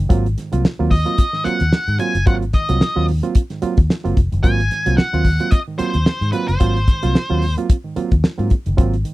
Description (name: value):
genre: funk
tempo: 110 BPM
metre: 4/4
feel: swing 56% on 16ths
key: Ab mixolydian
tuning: A4 = 440 Hz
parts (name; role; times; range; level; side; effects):
- barky reed electric piano; stabs; 0.0-9.1 s; Ab2 to F4; -22 LUFS; right 6 dB; overdrive
- vintage muted fingered electric bass; bass; 0.0-9.0 s; F1 to Ab2; -19 LUFS; left 1 dB; none
- damped 70s drum kit; drums; 0.1-9.1 s; hi-hat, kick drum, snare drum; -14 LUFS; equal; none
- octave-fuzz lead guitar; melody; 0.9-7.5 s; Cb5 to Ab5; -22 LUFS; left 1 dB; distortion
room: little or no reverb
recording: dry, close 1970s-style studio recording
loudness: -15 LUFS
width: side -18 dB against mid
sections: 0.0-9.1 A section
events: none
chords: 0.0 Ab13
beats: | 0.10 0.64 1.18 1.72 | 2.27 2.81 3.35 3.90 | 4.44 4.98 5.53 6.07 | 6.61 7.16 7.70 8.24 | 8.79